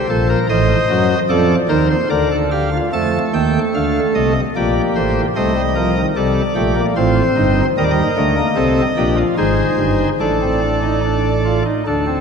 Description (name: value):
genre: classical, baroque-style 4-part fugue for pipe organ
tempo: 74 BPM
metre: 3/4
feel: straight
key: unclear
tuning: A4 = 437 Hz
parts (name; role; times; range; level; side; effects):
- pipe organ, cornet; solo; 0.0-12.2 s; G1 to A5; -14 LUFS; equal; none
room: wet church reverb, RT60 3.1 s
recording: none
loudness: -14 LUFS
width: side -6 dB against mid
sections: 0.0-2.9 A section; 2.9-12.2 B section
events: none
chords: 0.0 C5; 0.5 Adim7; 2.1 Bb/D; 2.9 Dm; 4.6 Gm/Bb; 5.4 Cm; 7.0 F7/A; 7.8 Eb; 9.4 Ab; 10.2 D5/A